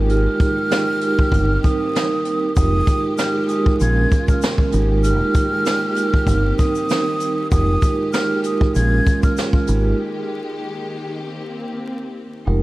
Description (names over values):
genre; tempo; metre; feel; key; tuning
hip hop, boom-bap hip-hop; 97 BPM; 4/4; swing 55% on 16ths; F minor; A4 = 440 Hz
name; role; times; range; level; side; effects
vibraphone with soft mallets; accompaniment; 0.0-12.6 s; G3 to Bb4; -21 LUFS; right 3 dB; tape echo
warm studio string section; sustained chords; 0.0-12.5 s; Db3 to G4; -29 LUFS; left 2 dB; none
deep dub fingered electric bass; bass; 0.0-12.6 s; F1 to Bb1; -17 LUFS; equal; none
breathy mellow silver concert flute; melody; 0.1-9.4 s; Eb6 to Ab6; -24 LUFS; equal; tape echo
jazz brush drum kit; drums; 0.1-9.8 s; hi-hat, kick drum, snare drum; -19 LUFS; equal; none
tube shaker; percussion; 2.6-9.8 s; none; -40 LUFS; left 10 dB; none
room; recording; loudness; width
small room reverb; echo-heavy mix, vinyl crackle; -16 LUFS; side -18 dB against mid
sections
0.0-12.5 A section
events
break 10.0-12.5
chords
0.0 Fm11/Ab; 1.3 Cm7/G; 2.6 Fm11; 3.8 Bbm7; 4.7 Fm11/Ab; 6.3 Cm7/G; 7.5 Fm11; 8.8 Bbm7; 9.7 Fm11/Ab; 11.2 Cm7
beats
| 0.09 0.71 1.33 1.95 | 2.57 3.19 3.81 4.42 | 5.04 5.66 6.28 6.90 | 7.52 8.13 8.75 9.37 | 9.99 10.61 11.23 11.85 | 12.46